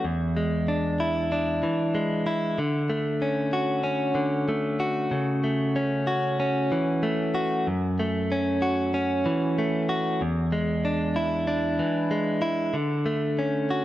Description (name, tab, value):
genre	rock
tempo	94 BPM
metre	4/4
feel	straight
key	unclear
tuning	A4 = 441 Hz
part	direct-recorded clean electric guitar	solo	0.0-13.8 s	E2 to F#4	-23 LUFS	equal	analog delay
room	moderate scoring stage reverb, RT60 2.0 s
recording	none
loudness	-23 LUFS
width	side -14 dB against mid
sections	0.0-2.6 A section; 2.6-12.8 A section; 12.8-13.8 B section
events	build-up 12.8-13.8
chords	0.0 E7; 2.6 Dmaj7; 5.1 A6/C#; 7.7 F#m7; 10.2 E7; 12.8 Dmaj7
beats	| 0.05 0.68 1.32 1.95 | 2.58 3.22 3.85 4.49 | 5.12 5.76 6.40 7.03 | 7.67 8.30 8.94 9.58 | 10.21 10.85 11.49 12.12 | 12.76 13.40